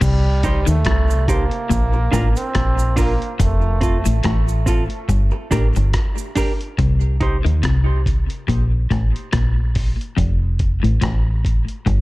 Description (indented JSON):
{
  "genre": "dub reggae",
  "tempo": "71 BPM",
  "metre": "4/4",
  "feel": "swing 56% on 16ths",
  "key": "C dorian",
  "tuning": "A4 = 440 Hz",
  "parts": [
    { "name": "bright trombone", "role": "melody", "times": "0.0-4.1 s", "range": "G3 to C4", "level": "-25 LUFS", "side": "right 3 dB", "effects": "tape echo" },
    { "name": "clean electric guitar", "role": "riff", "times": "0.0-12.0 s", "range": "F2 to Eb3", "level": "-26 LUFS", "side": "left 4 dB", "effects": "wide subtle chorus, tape echo" },
    { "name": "deep dub fingered electric bass", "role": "bass", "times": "0.0-12.0 s", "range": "F1 to Eb2", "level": "-18 LUFS", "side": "equal", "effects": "none" },
    { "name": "dusty soul sampler-style drum kit", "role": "drums", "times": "0.0-12.0 s", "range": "crash cymbal, hi-hat, kick drum, rim click", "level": "-21 LUFS", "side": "equal", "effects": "none" },
    { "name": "cabasa", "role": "percussion", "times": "0.0-6.6 s", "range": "none", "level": "-35 LUFS", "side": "right 8 dB", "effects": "tape echo" },
    { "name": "semi-hollow electric guitar", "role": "accompaniment", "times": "0.4-7.4 s", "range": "C4 to C5", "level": "-26 LUFS", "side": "right 2 dB", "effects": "tape echo" }
  ],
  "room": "digital ambience",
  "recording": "dark, warm production",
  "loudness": "-16 LUFS",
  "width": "side -19 dB against mid",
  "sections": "0.0-12.0 A section",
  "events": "part muted 6.8-12.0",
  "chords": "0.0 Cm; 1.7 Bb; 3.4 F; 5.1 Gm; 6.8 Cm; 8.5 N.C.; 10.2 F",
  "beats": "| 0.01 0.86 1.71 2.55 | 3.40 4.25 5.09 5.94 | 6.79 7.63 8.48 9.32 | 10.17 11.02 11.86"
}